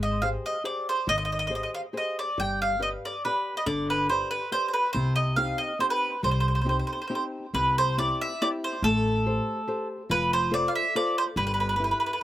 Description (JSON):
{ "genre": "italian folk, Italian serenade", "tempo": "140 BPM", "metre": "3/4", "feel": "rubato", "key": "C harmonic minor, C major from 7.5 s", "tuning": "A4 = 439 Hz", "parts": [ { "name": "mandolin", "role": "melody", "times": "0.0-12.2 s", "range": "A4 to G5", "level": "-26 LUFS", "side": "right 1 dB", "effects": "none" }, { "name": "nylon-string guitar", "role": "accompaniment", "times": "0.0-12.1 s", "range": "C3 to D5", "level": "-32 LUFS", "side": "left 2 dB", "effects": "slapback echo" }, { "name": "upright bass", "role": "bass", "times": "0.0-11.9 s", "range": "F1 to C2", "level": "-30 LUFS", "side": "equal", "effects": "none" } ], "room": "little or no reverb", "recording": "recorded outdoors, with no room sound", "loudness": "-24 LUFS", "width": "side -13 dB against mid", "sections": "0.0-7.5 A section; 7.5-12.2 B section", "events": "none", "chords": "0.0 Abmaj7; 2.4 G; 5.0 Cm; 7.5 C; 8.8 Am7; 10.1 F; 11.4 G6", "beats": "0.23 0.65 | 1.08 1.51 1.94 | 2.38 2.82 3.25 | 3.68 4.10 4.53 | 4.96 5.38 5.81 | 6.24 6.67 7.11 | 7.54 7.98 8.41 | 8.84 9.26 9.69 | 10.11 10.53 10.95 | 11.37 11.79" }